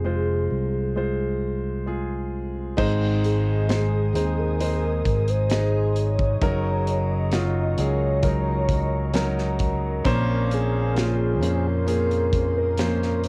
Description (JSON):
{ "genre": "pop ballad", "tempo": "66 BPM", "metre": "4/4", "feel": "straight", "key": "unclear", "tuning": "A4 = 440 Hz", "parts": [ { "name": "warm velvety synth lead", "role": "melody", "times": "0.0-13.2 s", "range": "Ab4 to Eb5", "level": "-31 LUFS", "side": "equal", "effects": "chorus, cassette tape" }, { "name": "warm concert grand piano", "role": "accompaniment", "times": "0.0-13.3 s", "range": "Ab2 to Eb5", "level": "-29 LUFS", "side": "equal", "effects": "cassette tape" }, { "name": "fingered electric bass", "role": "bass", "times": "0.0-13.3 s", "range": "F1 to F2", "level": "-27 LUFS", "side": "equal", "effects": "none" }, { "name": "glassy FM pad", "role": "sustained chords", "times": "3.5-13.3 s", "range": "Ab4 to Eb6", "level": "-40 LUFS", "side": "equal", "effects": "ensemble chorus, built-in reverb, cassette tape" }, { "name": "picked steel-string acoustic guitar", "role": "arpeggios", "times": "2.8-13.3 s", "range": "Ab2 to Bb4", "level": "-37 LUFS", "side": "equal", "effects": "none" }, { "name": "modern studio drum kit", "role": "drums", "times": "2.8-13.3 s", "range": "crash cymbal, hi-hat, kick drum, snare drum", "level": "-30 LUFS", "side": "equal", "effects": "none" } ], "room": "light reverb", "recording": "home recording on cassette", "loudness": "-23 LUFS", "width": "mono", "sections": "0.0-2.8 A section; 2.8-13.3 B section", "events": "none", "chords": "0.0 Fm; 2.8 Ab; 6.4 Gb6; 10.1 Bbmadd9", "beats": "0.06 0.96 1.87 | 2.78 3.69 4.60 5.51 | 6.42 7.33 8.24 9.15 | 10.06 10.96 11.87 12.78" }